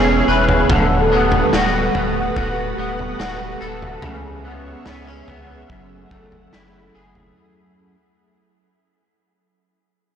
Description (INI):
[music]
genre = dream pop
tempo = 72 BPM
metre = 4/4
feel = straight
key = F# minor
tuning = A4 = 440 Hz
[part]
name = soft string machine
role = sustained chords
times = 0.0-7.3 s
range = G3 to F#5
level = -22 LUFS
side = right 2 dB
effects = ensemble chorus
[part]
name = electric guitar at the edge of break-up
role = arpeggios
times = 0.0-7.9 s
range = F#2 to B4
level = -20 LUFS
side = left 2 dB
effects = ensemble chorus, digital delay
[part]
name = saturated sub bass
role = bass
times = 0.0-7.3 s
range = D1 to C#2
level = -25 LUFS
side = equal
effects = tube saturation
[part]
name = raw garage drum kit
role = drums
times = 0.5-7.3 s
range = kick drum, snare drum, toms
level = -23 LUFS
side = equal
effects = none
[sound]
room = light reverb, small room ambience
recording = blown-out, overdriven recording, overdrive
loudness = -15 LUFS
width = side -8 dB against mid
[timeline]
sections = 0.0-7.4 A section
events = fade-out 0.0-7.4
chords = 0.0 E6; 0.7 Gmaj9/D; 4.0 C#m7; 5.7 F#m9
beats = | 0.69 1.53 2.36 3.19 | 4.03 4.86 5.69 6.53